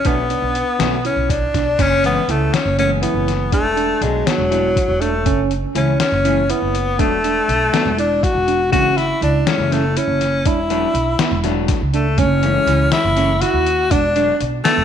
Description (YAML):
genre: progressive instrumental, band music in an uneven meter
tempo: 242 BPM (eighths)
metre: 7/8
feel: straight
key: unclear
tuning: A4 = 440 Hz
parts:
  - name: breathy tenor saxophone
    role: melody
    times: 0.0-14.8 s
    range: F#3 to F#4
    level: -18 LUFS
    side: left 2 dB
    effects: slapback echo
  - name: lo-fi sampler-style drum kit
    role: drums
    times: 0.0-14.8 s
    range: crash cymbal, hi-hat, kick drum, snare drum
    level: -22 LUFS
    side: left 3 dB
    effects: none
  - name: vintage hollow-body jazz guitar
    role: accompaniment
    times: 0.1-14.3 s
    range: D3 to E4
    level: -26 LUFS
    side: left 9 dB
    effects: none
  - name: bright tine electric piano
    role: arpeggios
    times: 0.1-14.8 s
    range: B3 to E4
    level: -24 LUFS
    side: right 12 dB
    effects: wide subtle chorus
  - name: upright bass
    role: bass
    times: 0.1-14.8 s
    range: E1 to D#2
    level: -21 LUFS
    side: right 1 dB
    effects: none
room: moderate echo chamber reverb, RT60 2.2 s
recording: 1960s-style stereo with parts hard left and right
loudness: -14 LUFS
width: side -8 dB against mid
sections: 0.0-1.8 A section; 1.8-14.8 B section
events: none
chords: 0.1 Bm7; 1.8 F#m7; 3.5 E9sus4; 5.3 F#m7; 7.0 E9sus4; 8.7 F#m7; 10.5 E9sus4; 12.2 F#m7; 13.9 E9sus4